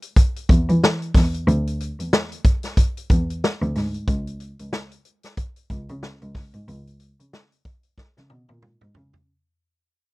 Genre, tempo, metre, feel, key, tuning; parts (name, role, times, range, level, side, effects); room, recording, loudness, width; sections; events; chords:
lush 1970s-style soul; 92 BPM; 4/4; swing 58% on 16ths; C# dorian; A4 = 439 Hz
vintage drum kit; drums; 0.0-9.3 s; hi-hat, kick drum, snare drum, toms; -18 LUFS; equal
dark cello; bass; 0.5-9.2 s; C#2 to E3; -23 LUFS; equal
little or no reverb; dry, close 1970s-style studio recording; -19 LUFS; side -21 dB against mid
0.0-9.3 A section
fade-out 0.0-9.3; drum fill 8.0-9.3